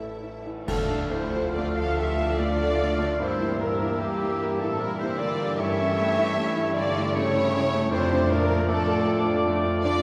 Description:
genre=classical, romantic movement for piano and orchestra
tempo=68-78 BPM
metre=3/4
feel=rubato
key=D minor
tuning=A4 = 440 Hz
part: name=rich studio violin section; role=melody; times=0.0-10.0 s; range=Bb3 to E5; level=-40 LUFS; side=equal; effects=none
part: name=warm baby grand piano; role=melody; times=0.0-10.0 s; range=D2 to E5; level=-31 LUFS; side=equal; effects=none
part: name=warm studio violin section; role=second line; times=0.0-10.0 s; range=G4 to F5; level=-33 LUFS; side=equal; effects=none
part: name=rich studio viola section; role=accompaniment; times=0.0-10.0 s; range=F3 to A4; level=-36 LUFS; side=equal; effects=none
part: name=clear studio double bass section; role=bass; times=0.0-10.0 s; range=A1 to G2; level=-36 LUFS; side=equal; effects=none
part: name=bright trombone section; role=sustained chords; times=0.6-10.0 s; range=D3 to G3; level=-38 LUFS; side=equal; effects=none
part: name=clear clarinet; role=second line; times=0.7-10.0 s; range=G4 to F5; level=-36 LUFS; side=equal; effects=none
part: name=clear oboe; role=second line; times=0.7-10.0 s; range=F5 to E6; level=-39 LUFS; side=equal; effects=none
part: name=mellow hollow silver concert flute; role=second line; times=0.7-10.0 s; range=G4 to F5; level=-37 LUFS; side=equal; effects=none
part: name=mellow bassoon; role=accompaniment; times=0.7-10.0 s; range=A3 to Bb3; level=-38 LUFS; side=equal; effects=none
part: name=warm French horn section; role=sustained chords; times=0.7-10.0 s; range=A3 to A4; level=-38 LUFS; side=equal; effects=none
part: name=clear trumpet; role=stabs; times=0.7-10.0 s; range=C#5 to F5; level=-38 LUFS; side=equal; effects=none
part: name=clear studio cello section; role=bass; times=0.7-10.0 s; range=G2 to F3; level=-36 LUFS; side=equal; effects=none
part: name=clash cymbals and concert bass drum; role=percussion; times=0.7-2.4 s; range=none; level=-41 LUFS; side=equal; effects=none
room=wet concert hall reverb, RT60 2.3 s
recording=heard from further back in the room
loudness=-25 LUFS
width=mono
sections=0.7-10.0 A section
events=band accent 0.7-1.5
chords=0.0 A; 0.7 Dm; 3.2 Edim/G; 5.6 A7/G; 7.9 Dm/F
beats=| 0.67 1.55 2.39 | 3.20 4.00 4.80 | 5.59 6.37 7.16 | 7.93 8.70 9.46

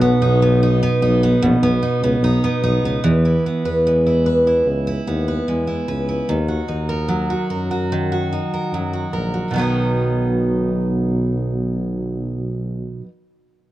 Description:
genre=acoustic pop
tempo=74 BPM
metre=4/4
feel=straight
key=B major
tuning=A4 = 436 Hz
part: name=bright reed electric piano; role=accompaniment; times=0.0-3.1 s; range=D#4 to F#5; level=-29 LUFS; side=left 6 dB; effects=none
part: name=picked steel-string acoustic guitar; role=accompaniment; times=0.0-13.1 s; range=B2 to B4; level=-18 LUFS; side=right 1 dB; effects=none
part: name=warm tuba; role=bass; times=0.0-12.9 s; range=A#1 to F#2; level=-22 LUFS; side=left 1 dB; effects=none
room=little or no reverb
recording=dark, warm production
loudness=-16 LUFS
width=side -14 dB against mid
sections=0.0-3.0 A section; 3.0-9.5 B section; 9.5-12.8 C section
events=none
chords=0.0 B; 3.0 E; 6.3 D#m; 9.5 Bmaj7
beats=0.61 1.42 2.23 | 3.04 3.85 4.66 5.47 | 6.29 7.10 7.91 8.72 | 9.53 10.35 11.16 11.97

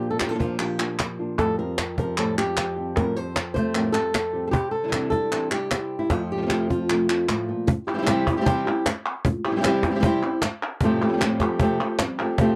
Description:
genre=flamenco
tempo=153 BPM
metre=4/4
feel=straight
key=F major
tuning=A4 = 441 Hz
part: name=flamenco guitar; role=melody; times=0.0-12.6 s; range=F2 to C5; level=-26 LUFS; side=equal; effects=none
part: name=flamenco guitar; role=stabs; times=0.0-12.6 s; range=F2 to G4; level=-30 LUFS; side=equal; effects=none
part: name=cajon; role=percussion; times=0.0-12.6 s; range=none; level=-27 LUFS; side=equal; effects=none
part: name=palmas hand claps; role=percussion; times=0.2-12.4 s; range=none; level=-31 LUFS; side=equal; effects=none
room=light reverb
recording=dry, close 1970s-style studio recording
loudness=-24 LUFS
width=mono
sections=0.0-7.7 A section; 7.7-12.6 B section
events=none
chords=0.0 Bb; 1.4 Fadd9; 4.5 Cadd9; 6.1 F; 7.7 C; 10.8 Fadd9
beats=0.21 0.60 1.00 | 1.39 1.79 2.18 2.57 | 2.97 3.36 3.75 4.15 | 4.54 4.93 5.33 5.72 | 6.11 6.51 6.90 7.29 | 7.68 8.08 8.47 8.86 | 9.25 9.64 10.04 10.43 | 10.82 11.21 11.61 12.00 | 12.39

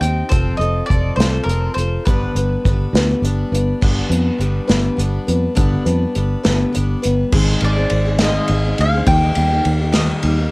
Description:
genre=folk rock and heartland rock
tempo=69 BPM (dotted quarters)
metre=6/8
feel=straight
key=unclear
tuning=A4 = 437 Hz
part: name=bowl-back mandolin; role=melody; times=0.0-3.5, 7.6-10.5 s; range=Bb4 to G5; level=-22 LUFS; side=equal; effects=cassette tape, analog delay
part: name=picked steel-string acoustic guitar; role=accompaniment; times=0.0-10.5 s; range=G2 to B4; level=-21 LUFS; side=left 2 dB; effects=cassette tape
part: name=fingered electric bass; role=bass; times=0.0-10.5 s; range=F1 to F2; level=-18 LUFS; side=equal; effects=none
part: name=unplugged drum kit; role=drums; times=0.0-10.4 s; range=crash cymbal, hi-hat, kick drum, ride cymbal, snare drum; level=-19 LUFS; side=equal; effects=cassette tape
room=little or no reverb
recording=home recording on cassette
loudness=-14 LUFS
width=side -25 dB against mid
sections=0.0-3.8 A section; 3.8-7.3 B section; 7.3-10.5 C section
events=none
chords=0.3 F; 2.1 G; 7.3 Ab; 9.1 Eb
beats=| 0.33 1.20 | 2.08 2.95 | 3.83 4.70 | 5.57 6.44 | 7.32 8.19 | 9.06 9.93

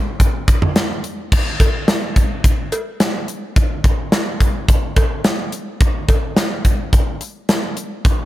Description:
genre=pop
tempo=107 BPM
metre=4/4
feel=straight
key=none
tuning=none
part: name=gated 80s drum kit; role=drums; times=0.2-8.2 s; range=cowbell, crash cymbal, hi-hat, kick drum, snare drum, toms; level=-15 LUFS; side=equal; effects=none
room=light reverb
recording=none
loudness=-15 LUFS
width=side -15 dB against mid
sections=0.0-1.3 A section; 1.3-8.3 B section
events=none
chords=none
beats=0.20 0.76 | 1.32 1.88 2.44 3.00 | 3.56 4.12 4.68 5.25 | 5.81 6.37 6.93 7.49 | 8.05

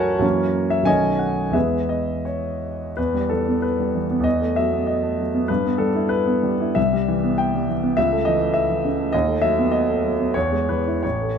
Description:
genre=classical, romantic character piece for solo piano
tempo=82-105 BPM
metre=2/4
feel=rubato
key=E minor, E major from 8.0 s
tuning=A4 = 441 Hz
part: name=warm concert grand piano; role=solo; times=0.0-11.4 s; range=A1 to A5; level=-18 LUFS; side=equal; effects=none
room=moderate recital hall reverb, RT60 1.4 s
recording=close, detailed microphones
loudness=-18 LUFS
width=side -7 dB against mid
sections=0.0-3.0 A section; 3.0-11.4 B section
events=none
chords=0.2 F#7; 0.9 B9; 1.5 E; 3.0 Em; 4.3 B7/E; 5.5 Em/G; 6.8 Cmaj7; 8.0 A/C#; 9.1 B7/D#; 10.4 E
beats=| 0.23 0.87 | 1.55 2.26 | 2.97 3.63 | 4.25 4.87 | 5.49 6.10 | 6.76 7.38 | 7.97 8.55 | 9.13 9.73 | 10.35 11.04

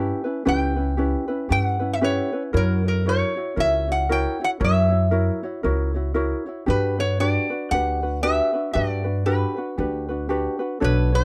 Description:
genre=Hawaiian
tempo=116 BPM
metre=4/4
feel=swing 60% on 8ths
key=unclear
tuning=A4 = 440 Hz
part: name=metal-body resonator slide guitar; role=melody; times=0.0-11.2 s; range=A#4 to A5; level=-27 LUFS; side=equal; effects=none
part: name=ukulele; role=accompaniment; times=0.0-11.2 s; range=C#4 to C#5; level=-28 LUFS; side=equal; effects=none
part: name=upright bass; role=bass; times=0.0-11.2 s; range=B1 to G2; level=-25 LUFS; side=equal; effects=none
room=little or no reverb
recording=dry, close 1970s-style studio recording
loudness=-23 LUFS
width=mono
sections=0.0-11.2 A section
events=none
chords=0.0 C#m7b5; 2.5 F#7; 6.7 Gmaj7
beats=| 0.46 0.98 1.50 2.02 | 2.54 3.05 3.57 4.09 | 4.61 5.12 5.64 6.16 | 6.68 7.20 7.71 8.23 | 8.75 9.27 9.79 10.30 | 10.82

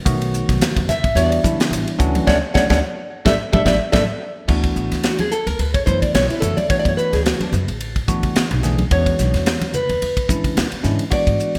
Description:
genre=electric jazz fusion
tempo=108 BPM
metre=4/4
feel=swing 55% on 16ths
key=D lydian from 4.5 s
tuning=A4 = 440 Hz
part: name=bell-like tine electric piano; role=accompaniment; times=0.1-11.6 s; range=D#3 to G#4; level=-26 LUFS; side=equal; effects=phaser
part: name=upright bass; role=bass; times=0.1-11.6 s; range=A1 to C#3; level=-24 LUFS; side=equal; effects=none
part: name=crisp fusion drum kit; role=drums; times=0.1-11.6 s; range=crash cymbal, hi-hat, kick drum, ride cymbal, snare drum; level=-24 LUFS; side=equal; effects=gated reverb
part: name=congas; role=percussion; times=0.6-11.0 s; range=none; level=-28 LUFS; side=equal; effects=none
part: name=nylon-string guitar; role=melody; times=0.9-11.6 s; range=D4 to F#5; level=-23 LUFS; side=equal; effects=none
room=light reverb, small room ambience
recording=bright 1980s-style digital production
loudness=-18 LUFS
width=mono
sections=0.0-4.5 A section; 4.5-11.6 B section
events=band accent 2.3-4.5; drum fill 3.4-4.5; nylon-string guitar solo 4.5-11.6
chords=0.1 B7; 1.2 Em9; 2.0 Dmaj9; 3.1 A7sus4; 4.5 D69; 8.9 E13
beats=| 0.06 0.61 1.17 1.72 | 2.27 2.83 3.38 3.93 | 4.48 5.04 5.59 6.14 | 6.70 7.25 7.80 8.36 | 8.91 9.46 10.01 10.57 | 11.12

